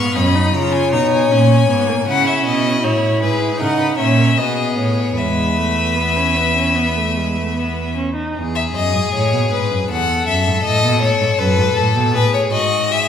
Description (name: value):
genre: classical, baroque-style fugue for string quartet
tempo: 77 BPM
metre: 4/4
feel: uneven beats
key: unclear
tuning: A4 = 438 Hz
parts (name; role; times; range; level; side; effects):
- rich violin; melody; 0.0-13.1 s; A4 to C#6; -19 LUFS; left 5 dB; none
- clear violin; second line; 0.0-13.1 s; E4 to E#5; -22 LUFS; left 4 dB; none
- warm viola; accompaniment; 0.0-8.3 s; G#3 to E#4; -21 LUFS; right 2 dB; none
- rich cello; bass; 0.0-13.1 s; E2 to C#3; -19 LUFS; right 2 dB; none
room: wet recital hall reverb, RT60 1.6 s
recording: recorded in a church or concert hall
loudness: -14 LUFS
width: side -8 dB against mid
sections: 0.0-8.3 A section; 8.3-13.1 B section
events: none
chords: 0.0 D#m/F#; 0.5 C#; 2.1 C#m; 3.6 F#7/C#; 4.4 B7; 5.2 E; 8.3 F#m7/E; 11.4 B7/F#